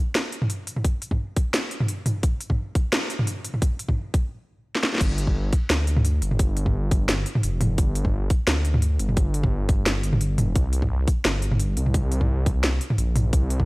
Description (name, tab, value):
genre	half-time drum and bass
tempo	173 BPM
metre	4/4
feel	swing 54% on 16ths, half-time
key	G minor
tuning	A4 = 441 Hz
part	drum and bass drum kit	drums	0.1-13.7 s	crash cymbal, hi-hat, snare drum, toms	-25 LUFS	equal	studio reverb
part	electronic kick drum	drums	0.8-13.7 s	none	-22 LUFS	equal	studio reverb
part	dark detuned saw bass	bass	5.0-13.7 s	F1 to D2	-23 LUFS	equal	none
room	light reverb, digital ambience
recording	dry, gritty hardware recording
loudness	-21 LUFS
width	side -23 dB against mid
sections	0.0-5.0 A section; 5.0-13.7 B section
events	build-up 0.0-5.0; stop 4.3-5.0; drum fill 4.7; drop 5.0-13.7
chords	none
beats	0.15 0.50 | 0.84 1.19 1.54 1.89 | 2.23 2.58 2.93 3.27 | 3.62 3.97 4.31 4.66 | 5.01 5.35 5.70 6.05 | 6.39 6.74 7.09 7.43 | 7.78 8.13 8.47 8.82 | 9.17 9.52 9.86 10.21 | 10.56 10.90 11.25 11.60 | 11.94 12.29 12.64 12.98 | 13.33